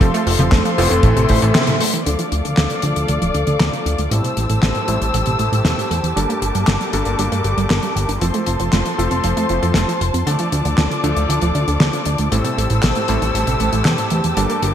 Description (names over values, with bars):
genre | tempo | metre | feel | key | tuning
italo disco | 117 BPM | 4/4 | straight | D minor | A4 = 440 Hz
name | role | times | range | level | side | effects
muted studio string section | sustained chords | 0.0-14.7 s | Bb3 to E6 | -22 LUFS | left 1 dB | low-pass filter
analog pluck | arpeggios | 0.0-14.7 s | A2 to G4 | -23 LUFS | right 4 dB | chorus, ping-pong delay
clear electric grand piano | stabs | 0.0-14.7 s | G2 to C5 | -25 LUFS | left 3 dB | low-pass filter, ping-pong delay
fat analog bass | bass | 0.0-14.7 s | D1 to G2 | -20 LUFS | equal | none
damped 70s drum kit | drums | 0.0-14.7 s | handclaps, hi-hat, snare drum, toms | -20 LUFS | left 1 dB | gated reverb
kick drum | drums | 0.0-1.4 s | none | -14 LUFS | equal | none
room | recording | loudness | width
moderate plate reverb, RT60 2.6 s | bright 1980s-style digital production | -15 LUFS | side -9 dB against mid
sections
0.0-2.1 A section; 2.1-14.7 B section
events
break 1.5-2.1; band accent 1.5; filter sweep on synth arpeggio sound 2.1-14.7; filter sweep on electric grand piano 2.1-14.7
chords
0.0 F; 1.0 Am; 2.1 Dm; 4.1 Am7; 6.2 Gmadd9; 8.2 F; 10.3 Dm; 12.3 Am7